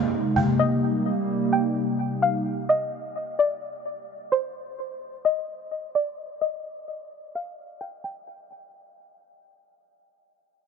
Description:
hip hop, atmospheric cloud-rap; 129 BPM; 4/4; half-time; C minor; A4 = 441 Hz
string-like resonator pluck; melody; 0.0-9.4 s; C5 to G5; -26 LUFS; left 1 dB; chorus, low-pass filter, digital delay
hollow soft pad; sustained chords; 0.0-2.4 s; C3 to G4; -24 LUFS; right 1 dB; chorus, low-pass filter
cajon; drums; 0.4-0.5 s; -31 LUFS; left 1 dB
moderate huge ambient reverb, RT60 6.0 s; nothing above 7.8 kHz; -23 LUFS; side -6 dB against mid
0.0-8.0 A section; 8.0-10.7 B section
break 0.0-0.6; filter sweep 0.0-8.0
0.0 Abmaj9; 0.6 Cm7; 4.3 N.C.

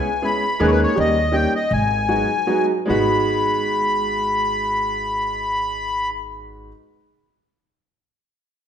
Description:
musette waltz; 146-167 BPM; 3/4; straight; G# minor; A4 = 440 Hz
accordion; melody; 0.0-6.1 s; B4 to B5; -21 LUFS; left 2 dB; light tremolo tuning
clear upright piano; accompaniment; 0.0-6.7 s; F#3 to G#4; -22 LUFS; right 1 dB
upright bass; bass; 0.6-6.7 s; G#1 to D#2; -27 LUFS; equal
wet recital hall reverb, RT60 1.3 s; minimal, uncompressed stereo recording; -17 LUFS; side -8 dB against mid
0.0-2.9 A section; 2.9-5.3 B section
slowing down 0.6-2.9
0.0 C#m7; 0.6 D#7sus4; 1.0 D#7; 1.7 G#m7

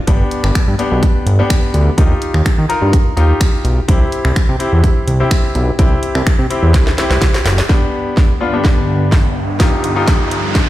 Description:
dance-pop; 126 BPM; 4/4; straight; A4 = 440 Hz
clear concert grand piano; accompaniment; 0.1-10.7 s; B3 to Bb4; -19 LUFS; left 2 dB; sidechain pumping
fat analog bass; bass; 0.1-7.6 s; F#1 to Eb3; -13 LUFS; equal; sidechain pumping
house drum kit; drums; 0.1-10.7 s; finger snaps, hi-hat, kick drum, snare drum; -13 LUFS; equal
ethereal airy pad; sustained chords; 8.0-10.7 s; G2 to Eb4; -20 LUFS; equal; ensemble chorus, built-in reverb, sidechain pumping
riser; sound effects; 8.7-10.7 s; -24 LUFS; right 2 dB
digital ambience; played on a big sound system in a bare room, stone room reverb; -11 LUFS; side -15 dB against mid
0.0-7.7 A section; 7.7-10.7 B section
drum fill 6.7-7.7, 7.7-10.7; build-up 7.7-10.7; filter sweep 7.7-10.7; riser 8.7-10.7
0.1 G; 2.0 Ebadd9; 3.9 C; 7.7 G; 9.6 Ebadd9

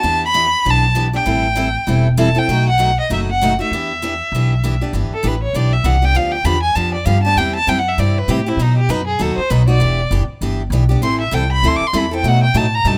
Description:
acoustic string swing (jazz manouche); 197 BPM; 4/4; swing 57% on 8ths; E minor; A4 = 440 Hz
rich violin; melody; 0.0-13.0 s; D#4 to D6; -20 LUFS; equal
picked steel-string acoustic guitar; accompaniment; 0.0-13.0 s; B2 to A4; -23 LUFS; equal
upright bass; bass; 0.0-13.0 s; E1 to B2; -19 LUFS; equal
small room ambience; rough home demo mix; -16 LUFS; mono
0.0-4.9 A section; 4.9-13.0 B section
violin solo 4.9-13.0
0.0 Em7; 1.3 Am7; 2.5 B7; 3.7 Em7; 6.2 G7/D; 7.4 C; 8.6 B; 9.8 Em7; 11.0 Am7; 12.2 B7

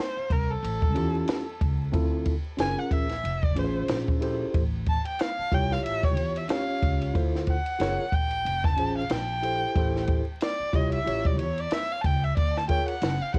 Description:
hip hop, jazz-hop; 92 BPM; 4/4; swing 58% on 16ths; A4 = 441 Hz
warm erhu; melody; 0.0-13.4 s; A4 to A5; -33 LUFS; equal; cassette tape, analog delay
compact cocktail drum kit; drums; 0.0-13.4 s; hi-hat, kick drum, ride cymbal, snare drum; -30 LUFS; equal; vintage 12-bit sampler grit, cassette tape
upright bass; bass; 0.2-13.4 s; F1 to E2; -33 LUFS; equal
mellow tine electric piano; accompaniment; 0.9-13.4 s; C4 to Db5; -33 LUFS; equal; cassette tape
light reverb; home recording on cassette, vinyl crackle; -27 LUFS; mono
0.0-13.4 A section
erhu solo 0.0-13.4
0.0 Am; 0.6 A7b13; 1.9 Dm7; 2.6 Gbmaj7; 3.2 F; 3.9 Bbm7; 4.5 Am7; 5.8 A7b13; 7.2 Dm7; 7.8 Gbmaj7; 8.5 F; 9.1 C7/Bb; 9.8 Am7; 11.1 A7b13; 12.4 Dm

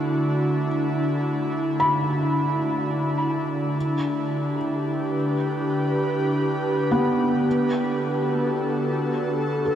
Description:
ambient; 65 BPM; 4/4; straight; A4 = 436 Hz
airy breathy pad; sustained chords; 0.0-9.8 s; D3 to B4; -22 LUFS; equal; chorus
felt-muted upright piano; arpeggios; 0.0-9.8 s; B3 to B5; -26 LUFS; equal; tape echo
organ-like drone; drone; 0.0-9.8 s; D3 to A3; -38 LUFS; right 1 dB
wet huge ambient reverb, RT60 8.6 s; -21 LUFS; side -10 dB against mid
0.0-9.8 A section
0.0 D; 3.8 G69/D; 7.5 Gmaj9/D

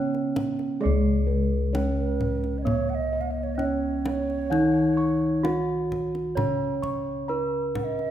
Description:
Javanese gamelan; 65 BPM; 4/4; straight; Db slendro; A4 = 440 Hz
gamelan-type bronze metallophone; melody; 0.0-8.1 s; Cb4-45c to Db5; -27 LUFS; right 1 dB
gamelan-type bronze metallophone; accompaniment; 0.0-8.1 s; Eb3+30c to Db4; -31 LUFS; right 2 dB
gamelan-type bossed gongs; arpeggios; 0.0-7.8 s; Cb5-45c to Db6; -34 LUFS; equal
gamelan-type bossed gongs; bass; 0.0-8.1 s; Db2 to Ab4+25c; -29 LUFS; left 2 dB
kendang; percussion; 0.1-8.1 s; -33 LUFS; left 1 dB
xiao; second line; 2.0-8.1 s; Cb5-47c to Gb5+37c; -32 LUFS; right 5 dB
moderate scoring stage reverb, RT60 1.8 s; minimal, uncompressed stereo recording; -23 LUFS; side -11 dB against mid
0.8-8.1 A section

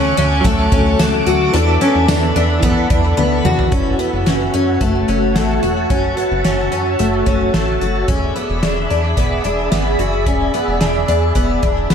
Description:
dream pop; 110 BPM; 4/4; straight; F# minor; A4 = 440 Hz
direct-recorded clean electric guitar; accompaniment; 0.0-4.3 s; E3 to A4; -23 LUFS; right 3 dB; tremolo, lush chorus
ensemble organ-string; sustained chords; 0.0-11.9 s; F#4 to D6; -20 LUFS; right 1 dB; ensemble chorus
picked twelve-string acoustic guitar; arpeggios; 0.0-11.9 s; A3 to F#4; -18 LUFS; left 4 dB; lush chorus, ping-pong delay
chorused synth bass; bass; 0.0-11.9 s; E1 to F#2; -19 LUFS; equal
loose indie drum kit; drums; 0.2-11.9 s; hi-hat, kick drum, snare drum, tambourine, toms; -20 LUFS; right 1 dB
twinkling granular texture; texture; 1.4-4.0 s; B4; -30 LUFS; right 1 dB; built-in reverb, ping-pong delay
light reverb, small room ambience; dark, warm production; -13 LUFS; side -7 dB against mid
0.0-3.7 A section; 3.7-11.9 B section
drum fill 3.2-3.7
0.0 Dmaj7; 1.5 E7sus4; 3.7 F#m7; 8.1 E7

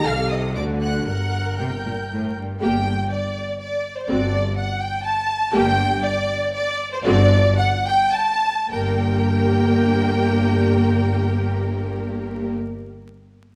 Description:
quick classical-period movement for string orchestra; 100-126 BPM; 3/4; rubato; G minor; A4 = 439 Hz
rich symphonic violin section; melody; 0.0-12.5 s; C5 to G6; -29 LUFS; equal
rich studio violin section; second line; 0.0-12.5 s; Bb4 to A5; -27 LUFS; equal
rich symphonic viola section; accompaniment; 0.0-12.5 s; Bb3 to Bb4; -26 LUFS; equal
clear symphonic cello section; bass; 0.0-12.5 s; G2 to D3; -28 LUFS; equal
clear symphonic double bass section; bass; 0.0-12.5 s; G1 to D2; -26 LUFS; equal
moderate recital hall reverb, RT60 1.7 s; vinyl crackle; -21 LUFS; mono
0.0-2.6 A section; 2.6-8.7 B section; 8.7-12.1 C section
slowing down 4.8-8.7
0.1 Adim/C; 0.6 D; 1.1 Gm; 4.1 D7/G; 5.5 Gm; 7.1 D7/G; 8.7 Gm

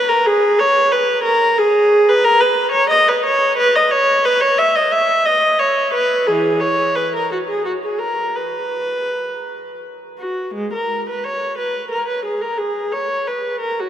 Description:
classical, baroque-style suite movement for unaccompanied viola; 89 BPM; 3/4; rubato; B major; A4 = 439 Hz
warm viola; solo; 0.0-13.9 s; E3 to E5; -14 LUFS; equal
wet cathedral reverb, RT60 6.0 s; -14 LUFS; side -10 dB against mid
0.0-10.5 A section; 10.5-13.9 A section

